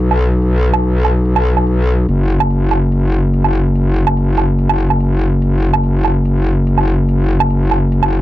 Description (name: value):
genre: heavy wobble dubstep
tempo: 144 BPM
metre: 4/4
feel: half-time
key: unclear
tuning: A4 = 441 Hz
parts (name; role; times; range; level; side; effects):
- metallic wobble bass; bass; 0.0-8.2 s; F#1 to B1; -12 LUFS; left 1 dB; chorus, overdrive
- electronic hi-hat and woodblock; drums; 0.0-8.2 s; none; -18 LUFS; right 6 dB; overdrive, low-pass filter on hats, low-pass filter on perc, low-pass filter on room
room: little or no reverb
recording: none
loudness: -12 LUFS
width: side -15 dB against mid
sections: 0.0-8.2 A section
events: none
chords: none